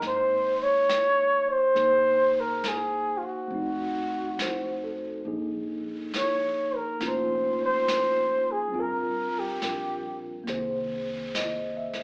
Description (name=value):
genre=jazz ballad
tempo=69 BPM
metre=4/4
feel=swing 66% on 8ths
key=unclear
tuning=A4 = 441 Hz
part: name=mellow flugelhorn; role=melody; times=0.0-10.2 s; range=F4 to Db5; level=-27 LUFS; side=equal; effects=none
part: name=mellow tine electric piano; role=accompaniment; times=0.0-12.0 s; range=D#3 to E5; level=-35 LUFS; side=equal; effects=none
part: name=upright bass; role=bass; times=0.0-12.0 s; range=F1 to F2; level=-50 LUFS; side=equal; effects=none
part: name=jazz brush drum kit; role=drums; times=0.0-12.0 s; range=brushed snare drum, hi-hat, snare drum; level=-38 LUFS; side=equal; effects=none
room=wet large studio reverb, RT60 0.8 s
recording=band playing live in one room, AM radio sound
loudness=-27 LUFS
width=mono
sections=0.0-12.0 A section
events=none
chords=0.0 Dbsus2; 1.8 Abadd9/C; 3.5 F7b9; 5.3 Bbm9; 8.7 Gm7; 10.5 C7alt